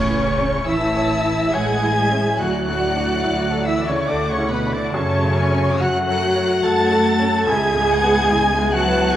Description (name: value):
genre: cinematic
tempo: 71 BPM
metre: 3/4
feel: rubato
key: A major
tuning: A4 = 440 Hz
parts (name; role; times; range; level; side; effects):
- rich studio violin section; melody; 0.0-9.2 s; B5 to A6; -27 LUFS; left 2 dB; none
- clear oboe; second line; 0.0-9.2 s; B4 to A5; -26 LUFS; equal; none
- hollow flute section; second line; 0.0-9.2 s; B4 to A5; -24 LUFS; left 1 dB; none
- clear baby grand piano; accompaniment; 0.0-9.2 s; C#2 to D5; -26 LUFS; equal; none
- warm studio viola section; accompaniment; 0.0-9.1 s; B3 to A4; -23 LUFS; right 2 dB; none
- mellow French horn section; sustained chords; 0.0-9.2 s; E3 to F#4; -27 LUFS; left 4 dB; none
- rich studio cello section; bass; 0.0-9.1 s; B2 to A3; -25 LUFS; right 2 dB; none
- rich studio double bass section; bass; 0.0-9.0 s; A1 to F#2; -25 LUFS; right 2 dB; none
- rich studio violin section; second line; 0.7-9.1 s; D5 to A5; -29 LUFS; left 2 dB; none
room: wet scoring stage reverb, RT60 2.1 s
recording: worn, warbling old tape, cassette tape, warbly pitch drift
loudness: -16 LUFS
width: side -12 dB against mid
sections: 0.0-9.2 A section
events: none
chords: 0.0 A; 2.4 Dadd9; 4.9 F#m; 7.5 C#m7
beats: 0.69 1.54 | 2.39 3.24 4.09 | 4.94 5.80 6.64 | 7.48 8.31 9.15